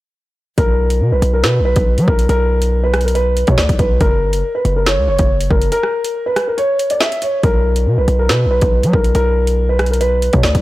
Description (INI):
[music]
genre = hip hop, drill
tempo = 140 BPM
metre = 4/4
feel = half-time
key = unclear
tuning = A4 = 440 Hz
[part]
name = dark concert grand piano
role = melody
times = 0.6-10.6 s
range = A#4 to E5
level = -17 LUFS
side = equal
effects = none
[part]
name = distorted 808-style bass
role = bass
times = 0.6-10.6 s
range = F#1 to F#3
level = -15 LUFS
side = equal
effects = distortion
[part]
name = drill drum kit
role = drums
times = 0.6-10.6 s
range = hi-hat, kick drum, rim click, snare drum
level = -17 LUFS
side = equal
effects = none
[sound]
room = little or no reverb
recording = blown-out, overdriven recording, overdrive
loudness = -12 LUFS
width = side -17 dB against mid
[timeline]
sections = 0.6-10.6 A section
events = break 5.7-7.4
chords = 0.6 N.C.; 4.0 F#; 7.4 N.C.